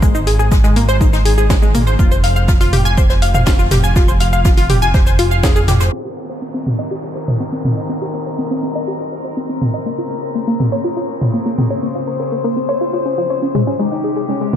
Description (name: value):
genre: melodic techno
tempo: 122 BPM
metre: 4/4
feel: straight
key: C phrygian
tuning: A4 = 440 Hz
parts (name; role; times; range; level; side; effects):
- tight sequenced synth; arpeggios; 0.0-14.6 s; F3 to Ab5; -19 LUFS; left 1 dB; chorus, sidechain pumping, ping-pong delay
- fat analog bass; bass; 0.0-5.9 s; F1 to Ab1; -15 LUFS; equal; sidechain pumping
- electronic kick drum; drums; 0.0-5.5 s; none; -14 LUFS; equal; overdrive
- house drum kit; drums; 0.0-14.6 s; hi-hat, shaker, snare drum, toms; -21 LUFS; right 1 dB; none
- jazz brush drum kit; drums; 0.0-5.9 s; hi-hat, snare drum; -31 LUFS; left 1 dB; high-pass filter on hats, high-pass filter on snare, high-pass filter on room
- rich chamber string section; sustained chords; 5.9-14.6 s; C3 to C5; -23 LUFS; left 3 dB; sidechain pumping
- downlifter; sound effects; 6.0-9.9 s; none; -32 LUFS; right 1 dB; none
- fat analog lead; melody; 13.8-14.6 s; Db4 to Eb4; -21 LUFS; left 1 dB; phaser, wide subtle chorus, sidechain pumping
room: light reverb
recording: low-pass filter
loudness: -13 LUFS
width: side -10 dB against mid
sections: 0.0-5.9 A section; 5.9-14.6 B section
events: filter sweep on synth arpeggio sound 5.9-14.6; filter sweep 5.9-14.6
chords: 0.0 N.C.; 5.9 Cm7; 9.9 Bbmadd9; 13.8 Abmaj7